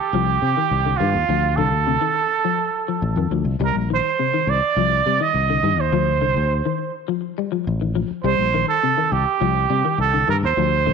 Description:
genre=afrobeat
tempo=103 BPM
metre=4/4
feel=straight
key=C dorian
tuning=A4 = 444 Hz
part: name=breathy trumpet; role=melody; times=0.0-10.9 s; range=F4 to Eb5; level=-20 LUFS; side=right 9 dB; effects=slapback echo
part: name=clean electric guitar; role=arpeggios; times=0.1-10.9 s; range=C3 to G3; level=-25 LUFS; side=left 14 dB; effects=ensemble chorus, slapback echo
part: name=fingered electric bass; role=bass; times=0.1-10.9 s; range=A1 to C3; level=-22 LUFS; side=left 2 dB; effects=none
room=light reverb, small room ambience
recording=1960s-style stereo with parts hard left and right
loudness=-18 LUFS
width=side -6 dB against mid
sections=0.0-10.9 A section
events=none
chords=0.0 Cm; 1.3 Dm7; 3.6 Cm; 5.9 Dm7; 8.3 Cm

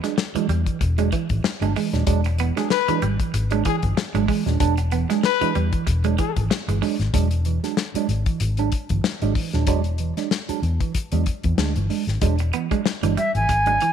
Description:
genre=funk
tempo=95 BPM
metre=4/4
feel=swing 56% on 16ths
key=E mixolydian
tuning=A4 = 440 Hz
part: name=electric guitar at the edge of break-up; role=riff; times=0.0-7.0, 12.4-13.9 s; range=E3 to B3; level=-28 LUFS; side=right 10 dB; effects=phaser
part: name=tine electric piano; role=stabs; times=0.0-13.8 s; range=E3 to D4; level=-26 LUFS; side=right 10 dB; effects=phaser
part: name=damped 70s drum kit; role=drums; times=0.0-13.9 s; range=hi-hat, kick drum, snare drum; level=-25 LUFS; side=left 4 dB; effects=none
part: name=vintage muted fingered electric bass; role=bass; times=0.3-13.8 s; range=D#1 to E2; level=-22 LUFS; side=left 1 dB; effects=none
part: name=bright trombone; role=second line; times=2.6-6.3 s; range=G#4 to B4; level=-25 LUFS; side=left 13 dB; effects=slapback echo
part: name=reedy silver concert flute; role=melody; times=13.2-13.9 s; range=E5 to G#5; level=-18 LUFS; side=equal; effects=none
room=light reverb, small room ambience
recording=1960s-style stereo with parts hard left and right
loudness=-19 LUFS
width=side -8 dB against mid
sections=0.0-12.2 A section; 12.2-13.9 B section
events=flute solo 12.2-13.9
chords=0.0 E9

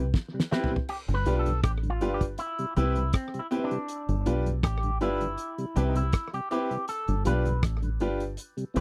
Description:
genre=roots reggae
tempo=80 BPM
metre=4/4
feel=straight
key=unclear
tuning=A4 = 440 Hz
part: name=mellow tonewheel organ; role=accompaniment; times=0.0-8.8 s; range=G2 to F4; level=-35 LUFS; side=equal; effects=overdrive, chorus vibrato, slow rotary speaker
part: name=bright grand piano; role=stabs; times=0.0-8.8 s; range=C4 to B4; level=-32 LUFS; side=equal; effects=none
part: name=deep dub fingered electric bass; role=bass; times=0.0-8.8 s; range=G1 to C2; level=-30 LUFS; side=equal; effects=none
part: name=damped 70s drum kit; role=drums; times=0.1-8.8 s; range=crash cymbal, hi-hat, kick drum, rim click, snare drum, toms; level=-31 LUFS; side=equal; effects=slapback echo
part: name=electric guitar with an envelope filter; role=accompaniment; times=0.5-8.8 s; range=G3 to B4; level=-36 LUFS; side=equal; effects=lush chorus, tape echo
room=little or no reverb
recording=dry, close 1970s-style studio recording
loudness=-28 LUFS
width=mono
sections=0.9-8.8 A section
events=drum fill 0.1-0.9; clean electric guitar solo 0.9-8.8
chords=0.0 Cmaj7; 0.9 G7; 2.4 Cmaj7; 3.9 G7; 5.4 Cmaj7; 6.9 G7

